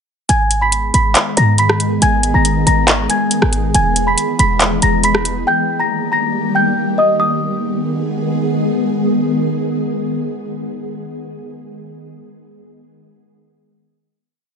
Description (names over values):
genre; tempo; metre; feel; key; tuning
hip hop, trap; 139 BPM; 4/4; half-time; G# harmonic minor; A4 = 440 Hz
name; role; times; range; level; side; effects
small celesta; melody; 0.3-8.5 s; D#5 to B6; -16 LUFS; equal; digital delay
ethereal airy pad; sustained chords; 0.7-11.0 s; D#3 to G#4; -18 LUFS; equal; ensemble chorus, built-in reverb
short 808-style bass; bass; 0.3-5.4 s; E1 to G#2; -17 LUFS; equal; none
trap drum kit; drums; 0.3-5.4 s; handclaps, hi-hat, rim click; -15 LUFS; equal; none
room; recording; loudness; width
light reverb, digital ambience; nothing above 10.6 kHz; -13 LUFS; side -6 dB against mid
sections
0.3-7.2 hook; 7.2-10.7 final chord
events
none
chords
0.3 G#m; 3.7 E; 5.5 D#; 7.2 G#m